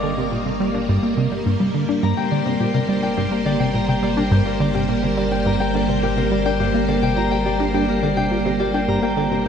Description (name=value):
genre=ambient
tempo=105 BPM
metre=4/4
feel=straight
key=G minor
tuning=A4 = 440 Hz
part: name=string machine, full ensemble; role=sustained chords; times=0.0-9.5 s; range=G3 to C5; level=-22 LUFS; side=right 1 dB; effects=ensemble chorus
part: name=tight sequenced synth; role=riff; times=0.0-9.5 s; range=G2 to D4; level=-21 LUFS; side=equal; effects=chorus, phaser, ping-pong delay
part: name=round analog bass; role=bass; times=0.0-9.5 s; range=G1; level=-29 LUFS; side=equal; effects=none
part: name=concert harp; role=arpeggios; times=2.0-9.5 s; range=G4 to Bb5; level=-23 LUFS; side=moving between left 7 dB and equal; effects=auto-pan, ping-pong delay
room=wet huge ambient reverb, RT60 7.4 s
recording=in a vast, echoing space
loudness=-17 LUFS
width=side -7 dB against mid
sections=0.0-9.5 A section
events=filter sweep on synth arpeggio sound 0.0-9.5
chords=0.0 Gm